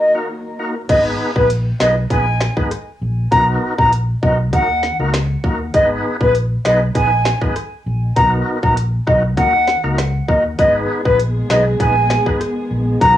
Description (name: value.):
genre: dancehall.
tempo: 99 BPM.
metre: 4/4.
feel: straight.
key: G# minor.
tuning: A4 = 440 Hz.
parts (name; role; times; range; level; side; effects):
concert flute; melody; 0.0-13.1 s; B4 to A#5; -16 LUFS; equal; none.
dark studio string section; sustained chords; 0.0-0.9, 10.6-13.2 s; D#3 to A#4; -24 LUFS; left 1 dB; sidechain pumping.
percussive tonewheel organ; accompaniment; 0.1-13.2 s; A#3 to B4; -22 LUFS; equal; fast rotary speaker.
fingered electric bass; bass; 0.9-13.2 s; G#1 to D#2; -19 LUFS; equal; none.
island pop drum kit; drums; 0.9-13.2 s; crash cymbal, finger snaps, hi-hat, kick drum, rim click, snare drum; -20 LUFS; equal; overdrive, cassette tape.
room: light reverb.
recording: home recording on cassette, small room ambience.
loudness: -14 LUFS.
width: side -12 dB against mid.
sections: 0.9-13.2 A section.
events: none.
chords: 0.0 D#m; 0.9 G#m; 3.3 Bmaj7; 4.5 D#m; 5.7 G#m; 8.2 Bmaj7; 9.4 D#m; 10.6 G#m.